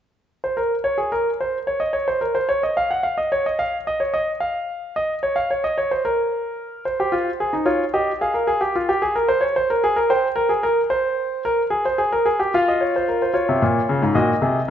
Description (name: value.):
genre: classical, baroque-style 3-part fugue for grand piano.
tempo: 74 BPM (dotted quarters).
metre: 12/8.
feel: straight.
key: unclear.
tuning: A4 = 440 Hz.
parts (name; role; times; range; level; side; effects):
clear concert grand piano; solo; 0.4-14.7 s; Ab2 to G5; -18 LUFS; equal; none.
room: moderate recital hall reverb, RT60 1.4 s.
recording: recorded in a church or concert hall, nothing above 7.8 kHz.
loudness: -18 LUFS.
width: side -9 dB against mid.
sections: 0.3-14.7 A section.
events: none.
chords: 0.3 N.C.; 6.9 Fm; 8.5 Ab; 10.1 C5; 11.7 Fm; 13.3 Bbm.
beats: | 0.31 1.13 1.95 2.77 | 3.60 4.42 5.23 6.05 | 6.86 7.68 8.49 9.30 | 10.11 10.92 11.72 12.53 | 13.35 14.15.